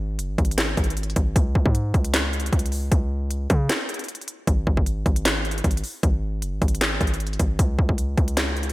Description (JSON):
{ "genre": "hip hop, trap", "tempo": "154 BPM", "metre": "4/4", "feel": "half-time", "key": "unclear", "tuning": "A4 = 438 Hz", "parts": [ { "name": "hard-hitting 808-style bass", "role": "bass", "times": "0.0-8.7 s", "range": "F#1 to C#3", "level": "-24 LUFS", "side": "equal", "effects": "none" }, { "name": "trap drum kit", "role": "drums", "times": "0.2-8.7 s", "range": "handclaps, hi-hat, kick drum, snare drum", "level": "-22 LUFS", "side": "equal", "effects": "gated reverb" } ], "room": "light reverb", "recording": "bright 1980s-style digital production", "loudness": "-20 LUFS", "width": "side -18 dB against mid", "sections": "0.0-8.7 A section", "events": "break 3.7-4.5", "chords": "none", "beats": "0.19 0.58 0.97 | 1.36 1.75 2.14 2.53 | 2.92 3.31 3.69 4.08 | 4.47 4.86 5.25 5.64 | 6.03 6.42 6.81 7.20 | 7.59 7.98 8.37" }